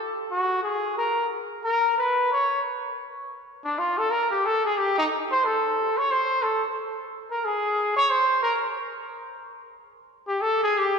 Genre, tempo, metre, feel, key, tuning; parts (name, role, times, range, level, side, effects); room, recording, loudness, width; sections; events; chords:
jazz; 180 BPM; 4/4; swing 64% on 8ths; A4 = 442 Hz
clear trumpet; solo; 0.3-11.0 s; D4 to Db5; -22 LUFS; equal
wet church reverb, RT60 3.2 s; recorded in a church or concert hall; -22 LUFS; side -6 dB against mid
0.0-9.4 A section; 9.4-11.0 B section